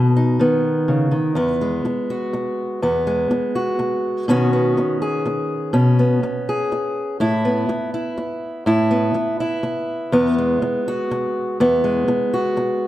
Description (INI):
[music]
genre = folk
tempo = 123 BPM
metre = 3/4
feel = straight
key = E major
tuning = A4 = 440 Hz
[part]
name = fingerpicked acoustic archtop guitar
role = solo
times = 0.0-12.9 s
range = E2 to G#4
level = -17 LUFS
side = equal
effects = none
[sound]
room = wet large studio reverb, RT60 1.4 s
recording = dark, warm production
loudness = -17 LUFS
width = side -14 dB against mid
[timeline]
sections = 0.0-1.4 A section; 1.4-12.9 B section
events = none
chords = 0.0 B; 1.4 E; 4.3 Badd9; 7.2 Asus2; 10.1 Eadd9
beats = 0.40 0.88 | 1.37 1.86 2.34 | 2.83 3.31 3.80 | 4.29 4.78 5.26 | 5.75 6.24 6.72 | 7.21 7.70 8.18 | 8.67 9.16 9.64 | 10.13 10.62 11.11 | 11.59 12.08 12.57